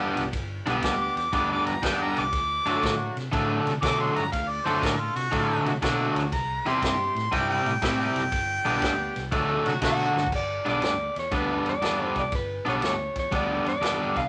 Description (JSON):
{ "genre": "electric blues shuffle", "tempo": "120 BPM", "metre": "4/4", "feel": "swing 67% on 8ths", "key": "G major", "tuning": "A4 = 437 Hz", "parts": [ { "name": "crunchy overdriven guitar", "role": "riff", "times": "0.0-14.2 s", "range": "G2 to E4", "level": "-29 LUFS", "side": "equal", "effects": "none" }, { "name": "brilliant horn section", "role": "stabs", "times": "0.0-10.3 s", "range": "F#3 to A4", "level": "-34 LUFS", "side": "equal", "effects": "none" }, { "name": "fingered electric bass", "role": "bass", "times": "0.0-14.3 s", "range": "F#1 to C3", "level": "-37 LUFS", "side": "equal", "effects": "none" }, { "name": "vintage drum kit", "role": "drums", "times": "0.2-14.2 s", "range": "crash cymbal, kick drum, ride cymbal, snare drum", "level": "-35 LUFS", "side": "equal", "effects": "none" }, { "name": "bright harmonica", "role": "second line", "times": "0.8-9.4 s", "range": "F4 to D6", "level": "-30 LUFS", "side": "equal", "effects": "overdrive" }, { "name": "electric guitar through a small old amp", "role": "melody", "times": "9.9-14.3 s", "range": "B4 to F#5", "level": "-31 LUFS", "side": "equal", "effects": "none" } ], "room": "moderate small room reverb, RT60 0.5 s", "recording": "none", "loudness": "-26 LUFS", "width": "mono", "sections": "0.0-10.3 A section; 10.3-14.3 B section", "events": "harmonica solo 0.0-10.3; drum fill 10.1", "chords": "0.0 G; 2.3 D; 6.3 C; 8.3 G; 9.3 D; 10.3 G", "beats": "| 0.33 0.83 1.33 1.83 | 2.33 2.83 3.33 3.83 | 4.33 4.83 5.33 5.82 | 6.32 6.82 7.32 7.82 | 8.32 8.82 9.32 9.82 | 10.32 10.82 11.32 11.82 | 12.32 12.82 13.32 13.82" }